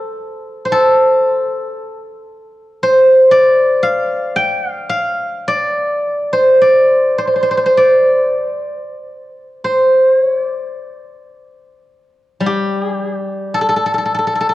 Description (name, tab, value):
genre	chinese traditional, Chinese solo plucked strings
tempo	48-58 BPM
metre	4/4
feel	rubato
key	D yu mode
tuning	A4 = 440 Hz
part	steel-string zither	solo	0.0-14.5 s	G3 to G5	-12 LUFS	equal	none
room	moderate concert hall reverb, RT60 2.4 s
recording	worn, warbling old tape, cassette tape, warbly pitch drift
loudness	-11 LUFS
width	side -16 dB against mid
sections	0.0-10.2 A section; 10.2-14.5 B section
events	none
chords	none